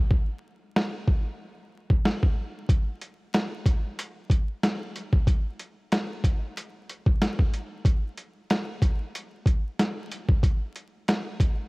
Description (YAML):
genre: hip hop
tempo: 93 BPM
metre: 4/4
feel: swing 55% on 16ths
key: none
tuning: none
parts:
  - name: boom bap sampler-style drum kit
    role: drums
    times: 0.1-11.6 s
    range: hi-hat, kick drum, snare drum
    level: -23 LUFS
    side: equal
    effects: overdrive
room: little or no reverb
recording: home recording on cassette, vinyl crackle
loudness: -24 LUFS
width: side -28 dB against mid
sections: 0.0-11.7 A section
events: break 0.0-2.7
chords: none